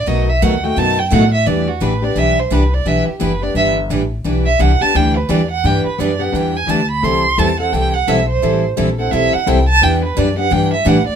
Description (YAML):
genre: acoustic string swing (jazz manouche)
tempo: 172 BPM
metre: 4/4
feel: swing 62% on 8ths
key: E minor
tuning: A4 = 440 Hz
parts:
  - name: dark violin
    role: second line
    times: 0.0-11.2 s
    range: F#4 to C6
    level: -17 LUFS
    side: right 4 dB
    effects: none
  - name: upright bass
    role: bass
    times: 0.0-11.1 s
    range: F#1 to A2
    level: -18 LUFS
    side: equal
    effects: none
  - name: picked plugged-in steel-string acoustic guitar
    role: accompaniment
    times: 0.1-11.0 s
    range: B2 to A4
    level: -18 LUFS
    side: left 4 dB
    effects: none
  - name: picked steel-string acoustic guitar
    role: accompaniment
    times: 0.1-11.0 s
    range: B2 to B4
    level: -22 LUFS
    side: right 8 dB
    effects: none
room: light reverb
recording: minimal, uncompressed stereo recording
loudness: -13 LUFS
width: side -8 dB against mid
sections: 0.0-1.5 A section; 1.5-11.2 A section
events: violin solo 0.0-11.2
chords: 0.1 B7; 1.5 Em7; 7.0 Am7; 9.8 Em7